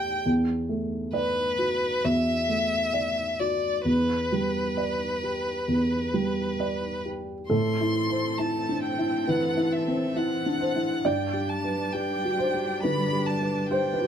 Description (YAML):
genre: neoclassical piano and strings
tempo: 67 BPM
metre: 4/4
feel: rubato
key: unclear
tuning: A4 = 439 Hz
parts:
  - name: clear violin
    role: melody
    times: 0.0-14.1 s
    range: B4 to C6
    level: -29 LUFS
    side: left 1 dB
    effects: none
  - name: dark upright piano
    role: accompaniment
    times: 0.0-14.1 s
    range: E2 to D5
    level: -26 LUFS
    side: right 1 dB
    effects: none
  - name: rich symphonic string section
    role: sustained chords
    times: 7.5-14.1 s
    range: E3 to D5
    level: -35 LUFS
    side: right 1 dB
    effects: none
room: light reverb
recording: none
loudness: -24 LUFS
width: side -8 dB against mid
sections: 0.0-7.5 A section; 7.5-14.1 B section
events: none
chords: 0.3 Bm7/E; 3.9 G/E; 7.5 Amadd9; 11.1 G